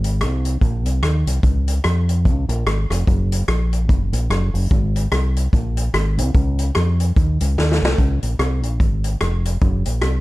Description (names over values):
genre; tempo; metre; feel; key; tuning
ska; 147 BPM; 4/4; swing 59% on 8ths; Db major; A4 = 435 Hz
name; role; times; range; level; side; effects
fingered electric bass; bass; 0.0-10.2 s; F1 to F2; -18 LUFS; equal; none
swinging big-band drum kit; drums; 0.0-10.1 s; hi-hat, kick drum, rim click, snare drum; -20 LUFS; equal; none
room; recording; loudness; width
little or no reverb; dark, warm production; -16 LUFS; side -18 dB against mid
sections
0.0-8.0 A section; 8.0-10.2 B section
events
drum fill 7.6-8.0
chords
none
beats
0.21 0.62 1.03 | 1.44 1.84 2.25 2.66 | 3.07 3.48 3.89 4.30 | 4.71 5.12 5.53 5.94 | 6.34 6.75 7.16 7.57 | 7.98 8.39 8.80 9.21 | 9.62 10.03